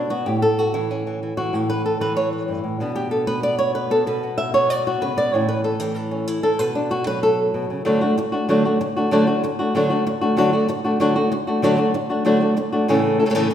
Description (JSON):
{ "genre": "flamenco", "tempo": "190 BPM", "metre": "4/4", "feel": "straight", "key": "unclear", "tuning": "A4 = 440 Hz", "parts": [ { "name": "flamenco guitar", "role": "solo", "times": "0.0-13.5 s", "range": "G2 to E5", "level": "-18 LUFS", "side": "equal", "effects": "none" } ], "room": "wet recital hall reverb, RT60 1.7 s", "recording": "recorded in a church or concert hall", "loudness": "-18 LUFS", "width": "side -10 dB against mid", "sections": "0.0-7.9 A section; 7.9-13.5 B section", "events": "nylon-string guitar solo 0.0-7.9", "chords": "0.3 Aadd9; 2.8 Bm; 5.3 A; 6.6 B5; 7.9 D; 12.9 A", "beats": "| 0.27 0.59 0.91 1.22 | 1.54 1.85 2.17 2.49 | 2.80 3.12 3.44 3.75 | 4.07 4.38 4.70 5.02 | 5.33 5.65 5.96 6.28 | 6.60 6.91 7.23 7.54 | 7.86 8.17 8.49 8.80 | 9.12 9.43 9.75 10.06 | 10.37 10.69 11.00 11.31 | 11.63 11.94 12.26 12.57 | 12.88 13.20 13.51" }